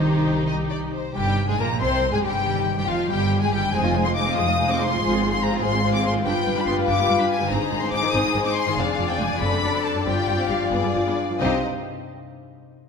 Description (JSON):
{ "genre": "classical", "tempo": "94 BPM (dotted quarters)", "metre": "6/8", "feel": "rubato", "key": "C minor", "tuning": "A4 = 440 Hz", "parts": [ { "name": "rich studio violin section", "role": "melody", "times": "0.0-11.6 s", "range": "C5 to Eb6", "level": "-26 LUFS", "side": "left 4 dB", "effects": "none" }, { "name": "warm symphonic violin section", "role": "second line", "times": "0.0-11.6 s", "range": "Eb4 to Eb5", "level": "-27 LUFS", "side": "left 4 dB", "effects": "none" }, { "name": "rich symphonic viola section", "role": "accompaniment", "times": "0.0-11.7 s", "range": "Eb3 to Ab4", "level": "-27 LUFS", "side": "equal", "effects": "none" }, { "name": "concert harp", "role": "arpeggios", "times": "0.0-11.7 s", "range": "F2 to C6", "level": "-28 LUFS", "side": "left 6 dB", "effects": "none" }, { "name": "rich symphonic cello section", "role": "bass", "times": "0.0-11.7 s", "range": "F2 to Eb3", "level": "-28 LUFS", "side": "right 2 dB", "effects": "none" }, { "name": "warm symphonic double bass section", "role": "bass", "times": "0.0-11.7 s", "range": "F1 to C2", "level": "-28 LUFS", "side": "right 4 dB", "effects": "none" } ], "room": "wet concert hall reverb, RT60 2.2 s", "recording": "none", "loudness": "-20 LUFS", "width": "side -6 dB against mid", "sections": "0.0-1.2 A section; 1.2-11.4 B section; 11.4-12.7 C section", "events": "none", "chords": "0.0 Cm; 1.2 Cm/G; 2.5 Cm; 3.7 Fm7; 5.0 Fm/Ab; 6.2 G7; 7.5 Ab; 8.8 Dm7b5/F; 9.4 D7/F#; 10.1 G7sus4; 10.7 G7b9; 11.4 Cm" }